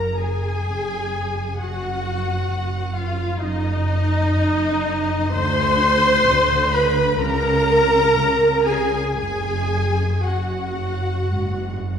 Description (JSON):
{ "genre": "classical, slow romantic movement for string orchestra", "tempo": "56-67 BPM", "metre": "4/4", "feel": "rubato", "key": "F# major", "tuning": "A4 = 439 Hz", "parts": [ { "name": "rich studio violin section", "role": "melody", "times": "0.0-12.0 s", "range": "D#5 to C6", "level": "-29 LUFS", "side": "left 6 dB", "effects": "none" }, { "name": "warm studio violin section", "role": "second line", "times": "0.0-12.0 s", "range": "D#5 to C6", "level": "-28 LUFS", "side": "left 1 dB", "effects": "none" }, { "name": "rich studio viola section", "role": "accompaniment", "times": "0.0-12.0 s", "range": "D#4 to C5", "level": "-20 LUFS", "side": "equal", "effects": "none" }, { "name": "rich studio double bass section", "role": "bass", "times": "0.0-12.0 s", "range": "F#1 to D2", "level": "-26 LUFS", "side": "right 1 dB", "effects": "none" }, { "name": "warm studio cello section", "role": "bass", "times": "0.0-12.0 s", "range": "F#2 to D3", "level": "-26 LUFS", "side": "right 1 dB", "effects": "none" } ], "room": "wet scoring stage reverb, RT60 1.7 s", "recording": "heard from further back in the room", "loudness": "-18 LUFS", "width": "side -8 dB against mid", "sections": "0.0-12.0 A section", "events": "none", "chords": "0.0 F#sus2; 5.3 Csus2/D; 7.2 A#m7/C#; 9.2 N.C." }